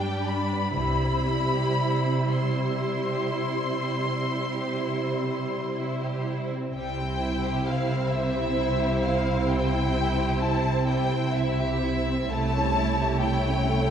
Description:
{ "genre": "classical, slow romantic movement for string orchestra", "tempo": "39-45 BPM (dotted quarters)", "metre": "12/8", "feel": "rubato", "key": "C major", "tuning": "A4 = 440 Hz", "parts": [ { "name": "warm symphonic violin section", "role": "melody", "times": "0.0-13.9 s", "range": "E5 to C6", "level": "-30 LUFS", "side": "left 3 dB", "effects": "none" }, { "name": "rich symphonic violin section", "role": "second line", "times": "0.0-13.9 s", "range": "G3 to D5", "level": "-32 LUFS", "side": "equal", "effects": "none" }, { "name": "rich studio viola section", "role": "accompaniment", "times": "0.0-13.9 s", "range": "G3 to E4", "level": "-30 LUFS", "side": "right 2 dB", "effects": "none" }, { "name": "dark symphonic cello section", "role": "bass", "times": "0.0-13.9 s", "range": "G2 to C3", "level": "-28 LUFS", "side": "right 1 dB", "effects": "none" }, { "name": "rich symphonic double bass section", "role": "bass", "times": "0.8-13.9 s", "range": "C2", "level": "-30 LUFS", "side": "right 2 dB", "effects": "none" } ], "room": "wet concert hall reverb, RT60 1.9 s", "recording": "heard from further back in the room", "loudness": "-23 LUFS", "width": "side -8 dB against mid", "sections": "0.0-6.8 A section; 6.8-13.9 A section", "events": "none", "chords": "0.0 G; 0.8 C; 12.3 A7/C", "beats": "| 0.77 2.30 3.81 5.30 | 6.77 8.14 9.51 10.88 | 12.32 13.67" }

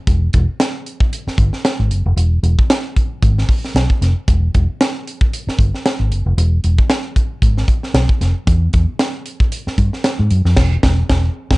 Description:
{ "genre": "funk", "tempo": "114 BPM", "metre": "4/4", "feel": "swing 56% on 16ths", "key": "unclear", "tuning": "A4 = 441 Hz", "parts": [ { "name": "vintage muted fingered electric bass", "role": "bass", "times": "0.1-11.6 s", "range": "E1 to G#2", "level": "-14 LUFS", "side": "equal", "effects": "none" }, { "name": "crisp fusion drum kit", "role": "drums", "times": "0.1-11.6 s", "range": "crash cymbal, hi-hat, kick drum, snare drum", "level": "-16 LUFS", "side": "equal", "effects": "none" } ], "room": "little or no reverb", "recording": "dark, warm production, nothing above 10.3 kHz", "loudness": "-14 LUFS", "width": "side -22 dB against mid", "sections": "0.0-11.6 A section", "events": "band accent 10.6-11.6", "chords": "none", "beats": "| 0.07 0.60 1.13 1.65 | 2.18 2.70 3.23 3.75 | 4.28 4.80 5.33 5.85 | 6.37 6.90 7.42 7.95 | 8.47 9.00 9.52 10.05 | 10.57 11.10" }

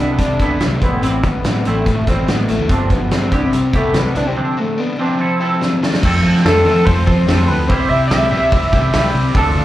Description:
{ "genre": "indie rock", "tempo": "144 BPM", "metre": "4/4", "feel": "straight", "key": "C major", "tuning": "A4 = 440 Hz", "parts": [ { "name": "fat analog lead", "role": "melody", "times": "0.0-9.1 s", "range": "A3 to E5", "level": "-19 LUFS", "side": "equal", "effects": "slapback echo" }, { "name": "overdriven semi-hollow guitar", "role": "riff", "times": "0.0-9.6 s", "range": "G2 to A4", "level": "-22 LUFS", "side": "left 4 dB", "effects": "slapback echo" }, { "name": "twangy electric guitar", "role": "riff", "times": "0.0-9.6 s", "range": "F3 to A4", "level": "-22 LUFS", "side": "right 3 dB", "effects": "lush chorus, slapback echo" }, { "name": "fuzz fingered electric bass", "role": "bass", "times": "0.0-9.6 s", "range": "G1 to F3", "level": "-18 LUFS", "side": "equal", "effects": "overdrive" }, { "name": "loose indie drum kit", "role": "drums", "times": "0.2-9.4 s", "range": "crash cymbal, hi-hat, kick drum, snare drum", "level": "-18 LUFS", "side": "equal", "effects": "none" }, { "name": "dark analog pad", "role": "sustained chords", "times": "9.5-9.6 s", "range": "C5 to D6", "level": "-31 LUFS", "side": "equal", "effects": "none" } ], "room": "light reverb", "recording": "live gig heard through the venue's PA, club reverb, vinyl crackle", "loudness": "-13 LUFS", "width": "side -14 dB against mid", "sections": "0.0-6.0 A section; 6.0-9.6 B section", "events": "drum fill 5.6-6.0", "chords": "0.0 Cmaj7; 0.8 Am7; 2.7 G7sus4; 3.3 Cmaj7; 4.4 Dm7; 5.2 Fmaj7; 6.0 F; 7.7 C", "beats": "0.19 0.61 | 1.02 1.44 1.86 2.28 | 2.70 3.12 3.53 3.95 | 4.37 4.79 5.20 5.62 | 6.04 6.45 6.87 7.28 | 7.70 8.11 8.53 8.94 | 9.36" }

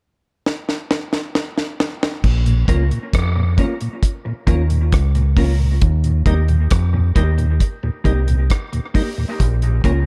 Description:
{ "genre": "dub reggae", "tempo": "67 BPM", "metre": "4/4", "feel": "straight", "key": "Bb dorian", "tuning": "A4 = 439 Hz", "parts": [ { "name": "deep reggae drum kit", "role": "drums", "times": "0.5-10.1 s", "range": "crash cymbal, hi-hat, kick drum, rim click, snare drum", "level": "-21 LUFS", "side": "equal", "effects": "none" }, { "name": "deep dub fingered electric bass", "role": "bass", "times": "2.2-10.1 s", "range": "Bb1 to F2", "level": "-18 LUFS", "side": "equal", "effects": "none" }, { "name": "mellow tonewheel organ", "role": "accompaniment", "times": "2.5-9.9 s", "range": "Eb2 to Eb4", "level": "-26 LUFS", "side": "equal", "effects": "slow rotary speaker" }, { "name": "mellow electric guitar", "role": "accompaniment", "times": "2.7-10.0 s", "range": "Bb3 to Bb4", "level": "-29 LUFS", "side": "equal", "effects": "dub echo" } ], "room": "little or no reverb", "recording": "echo-heavy mix", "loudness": "-18 LUFS", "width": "mono", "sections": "0.0-2.2 A section; 2.2-10.1 B section", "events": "drum fill 0.5-2.2", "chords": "0.0 N.C.; 2.2 Bbm; 5.8 Eb; 9.4 Bbm", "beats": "0.45 1.35 | 2.24 3.13 4.03 4.92 | 5.82 6.71 7.61 8.50 | 9.40" }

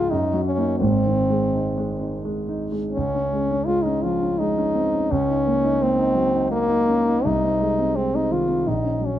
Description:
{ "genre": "classical, romantic duo for French horn and grand piano", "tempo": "85 BPM", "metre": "3/4", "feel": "rubato", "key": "Db major", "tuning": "A4 = 442 Hz", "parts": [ { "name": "warm French horn", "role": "melody", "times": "0.0-9.2 s", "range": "Bb3 to F4", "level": "-21 LUFS", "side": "left 1 dB", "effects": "none" }, { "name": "dark concert grand piano", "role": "accompaniment", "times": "0.0-9.2 s", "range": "Ab1 to F4", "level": "-22 LUFS", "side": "right 1 dB", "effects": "none" } ], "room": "light reverb", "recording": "close, detailed microphones", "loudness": "-19 LUFS", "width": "side -12 dB against mid", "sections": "0.0-3.0 A section; 3.0-9.2 B section", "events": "none", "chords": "0.1 Ebm/Gb; 0.8 Ab; 3.0 Db; 5.1 Ebm7/Db; 7.2 Ab/C; 8.7 Gb/Bb", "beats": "0.12 | 0.82 1.54 2.24 | 2.95 3.68 4.40 | 5.10 5.81 6.50 | 7.25 7.95 8.66" }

